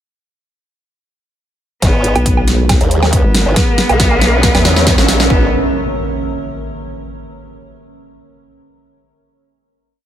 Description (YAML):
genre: heavy wobble dubstep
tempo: 138 BPM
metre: 4/4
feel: half-time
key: G# minor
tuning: A4 = 436 Hz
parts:
  - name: bright cello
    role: melody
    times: 1.8-5.5 s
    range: B3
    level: -19 LUFS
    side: equal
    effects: digital delay
  - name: evolving wavetable pad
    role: sustained chords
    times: 2.4-5.5 s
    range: A#4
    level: -22 LUFS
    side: right 2 dB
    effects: chorus, built-in reverb, sidechain pumping
  - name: formant-sweep wobble bass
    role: bass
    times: 1.8-5.5 s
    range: G#1 to E2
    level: -14 LUFS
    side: equal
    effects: chorus, overdrive
  - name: dubstep drum kit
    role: drums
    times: 1.8-5.3 s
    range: hi-hat, snare drum, woodblock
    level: -16 LUFS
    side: right 1 dB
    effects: none
  - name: electronic kick drum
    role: drums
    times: 1.8-5.4 s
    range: none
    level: -15 LUFS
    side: equal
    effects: none
  - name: riser and impact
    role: sound effects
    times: 3.6-7.0 s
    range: none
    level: -23 LUFS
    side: equal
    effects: none
  - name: vowel-sweep wobble bass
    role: bass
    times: 2.2-3.4 s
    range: G#1 to B1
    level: -14 LUFS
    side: equal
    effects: chorus, overdrive
room: light reverb, digital ambience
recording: none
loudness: -10 LUFS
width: side -10 dB against mid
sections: 1.8-5.3 build; 5.3-7.0 final chord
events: build-up 1.8-5.3; drum fill 1.8-5.3; filter sweep on ambient pad 1.8-5.3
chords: 1.8 G#madd9; 3.6 A#dim; 5.3 G#madd9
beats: | 1.82 2.26 2.69 3.13 | 3.56 4.00 4.43 4.87 | 5.30 5.74 6.17 6.61